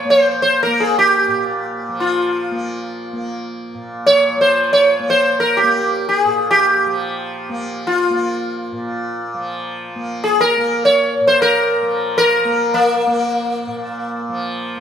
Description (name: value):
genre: indian classical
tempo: free time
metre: none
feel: none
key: Bb raga bhimpalasi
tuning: A4 = 442 Hz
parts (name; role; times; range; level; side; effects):
- sitar; melody; 0.0-14.2 s; Bb3 to Db5; -14 LUFS; equal; none
- tanpura; drone; 0.0-14.8 s; Bb2 to Bb3; -25 LUFS; right 1 dB; none
room: wet stone room reverb, RT60 1.4 s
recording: band playing live in one room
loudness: -14 LUFS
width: side -8 dB against mid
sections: 0.0-14.8 A section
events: none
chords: none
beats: free time